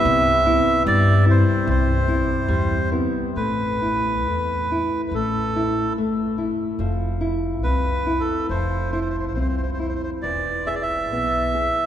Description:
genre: fado-style ballad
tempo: 65-75 BPM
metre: 2/4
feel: rubato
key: C major, A minor from 3.4 s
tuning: A4 = 440 Hz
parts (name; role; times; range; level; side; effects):
- melodica; melody; 0.0-11.9 s; A4 to E5; -23 LUFS; right 1 dB; none
- nylon-string guitar; accompaniment; 0.0-11.9 s; C3 to G#4; -24 LUFS; left 1 dB; none
- upright bass; bass; 0.1-11.7 s; E1 to G2; -24 LUFS; equal; none
room: wet cathedral reverb, RT60 5.5 s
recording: recorded in a church or concert hall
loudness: -19 LUFS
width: side -10 dB against mid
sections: 0.0-3.4 A section; 3.4-11.9 B section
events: none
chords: 0.0 Cmaj7; 3.4 A5; 6.8 F5; 10.2 E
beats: | 0.06 0.87 | 1.68 2.50 | 3.38 4.27 | 5.13 5.96 | 6.79 7.63 | 8.49 9.36 | 10.24 11.12

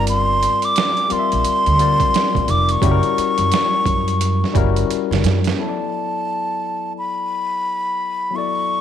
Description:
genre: R&B, neo-soul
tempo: 87 BPM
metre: 4/4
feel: swing 62% on 16ths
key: B minor from 5.6 s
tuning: A4 = 439 Hz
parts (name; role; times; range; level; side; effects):
- breathy mellow silver concert flute; melody; 0.0-8.8 s; A5 to D6; -19 LUFS; equal; none
- barky tine electric piano; accompaniment; 0.0-8.8 s; F#3 to E5; -23 LUFS; left 13 dB; overdrive, auto-pan
- upright bass; bass; 0.0-5.5 s; F1 to F#2; -19 LUFS; right 2 dB; none
- boom bap sampler-style drum kit; drums; 0.1-5.6 s; hi-hat, kick drum, snare drum; -22 LUFS; right 6 dB; overdrive
room: light reverb, digital ambience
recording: 1960s-style stereo with parts hard left and right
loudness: -16 LUFS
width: side -10 dB against mid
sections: 0.0-5.6 A section; 5.6-8.8 B section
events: drum fill 4.9-5.6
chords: 0.0 Gm7; 2.8 F#7b9; 5.6 Bm7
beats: | 0.06 0.75 1.44 2.13 | 2.82 3.51 4.20 4.89 | 5.58 6.27 6.96 7.65 | 8.34

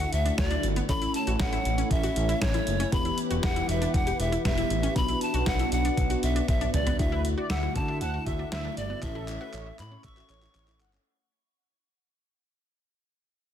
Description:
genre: synth-pop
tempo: 118 BPM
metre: 4/4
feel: straight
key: D major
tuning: A4 = 441 Hz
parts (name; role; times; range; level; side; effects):
- breathy bright pan flute; melody; 0.0-10.8 s; C#5 to C#6; -32 LUFS; equal; ping-pong delay
- FM electric piano with soft pad layer; accompaniment; 0.0-11.0 s; B3 to C#5; -35 LUFS; left 2 dB; chorus
- warm analog pad; sustained chords; 0.0-11.0 s; D3 to B4; -34 LUFS; equal; chorus
- analog pluck; arpeggios; 0.0-11.0 s; B3 to G4; -36 LUFS; left 2 dB; chorus, ping-pong delay
- smooth gliding synth bass; bass; 0.0-11.0 s; E1 to D3; -30 LUFS; equal; none
- detuned 8-bit digital drum machine; drums; 0.0-11.1 s; handclaps, hi-hat, kick drum, snare drum, toms; -30 LUFS; equal; none
- mellow synth brass; second line; 7.1-10.9 s; A4 to F#5; -40 LUFS; right 2 dB; chorus, ping-pong delay
room: light reverb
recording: dense, heavily limited modern master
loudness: -24 LUFS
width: side -10 dB against mid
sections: 0.0-7.0 A section; 7.0-11.1 B section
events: drum fill 6.5-7.0, 9.0-11.1; fade-out 7.0-11.1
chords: 0.0 Dadd9; 0.9 A; 2.9 Em; 5.0 Bm; 7.0 Dadd9; 9.0 A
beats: 0.38 | 0.89 1.40 1.91 2.42 | 2.92 3.43 3.94 4.45 | 4.96 5.47 5.97 6.48 | 6.99 7.50 8.01 8.52 | 9.03 9.53 10.04 10.55

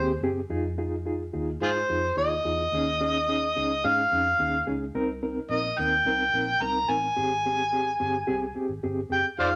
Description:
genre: uptempo 1960s-style soul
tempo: 108 BPM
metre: 4/4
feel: straight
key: F minor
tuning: A4 = 440 Hz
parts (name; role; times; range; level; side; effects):
- overdriven harmonica; melody; 0.0-9.6 s; F4 to Bb5; -27 LUFS; equal; none
- reed electric piano; accompaniment; 0.0-9.5 s; C4 to Bb4; -32 LUFS; equal; fast tremolo
- vintage muted fingered electric bass; bass; 0.0-9.6 s; F1 to Ab2; -37 LUFS; equal; none
room: wet studio reverb, RT60 0.7 s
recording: none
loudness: -26 LUFS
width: mono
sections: 0.5-9.6 A section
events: none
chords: 0.0 Abmaj7; 0.5 Fm7; 2.7 Eb7sus4; 5.0 Cm7; 7.2 Abmaj7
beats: | 0.51 1.06 1.62 2.17 | 2.73 3.29 3.84 4.40 | 4.95 5.51 6.06 6.62 | 7.17 7.73 8.28 8.84 | 9.39

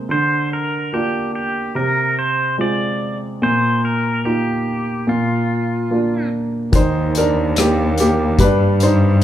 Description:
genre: acoustic folk-pop ballad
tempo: 72 BPM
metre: 4/4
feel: straight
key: Eb major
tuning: A4 = 441 Hz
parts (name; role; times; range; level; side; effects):
- warm grand piano; melody; 0.0-9.2 s; Bb2 to C5; -18 LUFS; right 1 dB; none
- pedal steel guitar; second line; 0.1-6.3 s; F4 to D5; -20 LUFS; equal; none
- warm cello; bass; 6.7-9.2 s; Eb2 to G2; -17 LUFS; left 1 dB; none
- loose indie drum kit; drums; 6.7-9.2 s; hi-hat, kick drum, rim click; -18 LUFS; left 2 dB; none
room: moderate large studio reverb, RT60 1.2 s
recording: band playing live in one room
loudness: -16 LUFS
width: side -11 dB against mid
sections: 0.0-6.7 A section; 6.7-9.2 B section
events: pedal steel guitar solo 0.0-6.7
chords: 0.1 Bb/D; 1.7 Fm/C; 3.4 Bbsus4; 5.1 Bb; 6.7 Eb5; 8.4 G5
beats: | 0.09 0.92 1.74 2.57 | 3.40 4.23 5.06 5.89 | 6.72 7.55 8.38 9.21

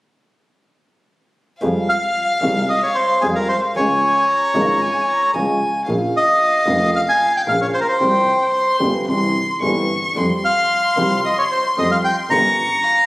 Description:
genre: tango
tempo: 113 BPM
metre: 4/4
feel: rubato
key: F minor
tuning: A4 = 439 Hz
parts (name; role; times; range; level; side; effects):
- warm violin; second line; 1.6-13.1 s; F5 to Db6; -23 LUFS; left 1 dB; none
- dark grand piano; accompaniment; 1.6-12.5 s; F1 to G4; -22 LUFS; equal; none
- clear double bass; bass; 1.6-12.5 s; F1 to F2; -25 LUFS; equal; none
- bandoneon; melody; 1.9-13.1 s; Ab4 to Bb5; -16 LUFS; equal; none
room: moderate scoring stage reverb, RT60 1.6 s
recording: recorded on a phone in the room, club reverb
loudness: -15 LUFS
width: side -20 dB against mid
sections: 1.6-13.1 A section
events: none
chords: 1.6 Fmadd9; 3.8 Db; 5.9 Bbm; 8.0 Csus4; 9.1 C; 10.2 Fsus2; 12.3 Gm7b5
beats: | 1.62 2.15 2.69 3.23 | 3.76 4.29 4.82 5.35 | 5.88 6.40 6.93 7.47 | 8.00 8.53 9.07 9.62 | 10.16 10.70 11.24 11.78 | 12.31 12.84

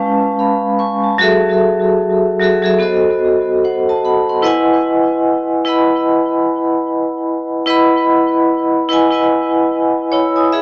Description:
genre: hip hop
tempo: 74 BPM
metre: 4/4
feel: swing 57% on 16ths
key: E major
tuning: A4 = 440 Hz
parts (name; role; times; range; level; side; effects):
- vibraphone with hard mallets; solo; 0.0-10.6 s; F#3 to E6; -12 LUFS; equal; cassette tape, tape echo
room: moderate studio ambience, RT60 0.5 s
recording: worn, warbling old tape, cassette tape, warbly pitch drift, small speaker sound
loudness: -12 LUFS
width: side -29 dB against mid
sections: 0.0-10.6 A section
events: none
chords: 0.0 C#7b13; 1.2 F#m7; 2.8 B7b9; 4.4 Emaj9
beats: 0.39 | 1.20 2.01 2.82 3.63 | 4.44 5.25 6.06 6.87 | 7.68 8.49 9.30 10.12

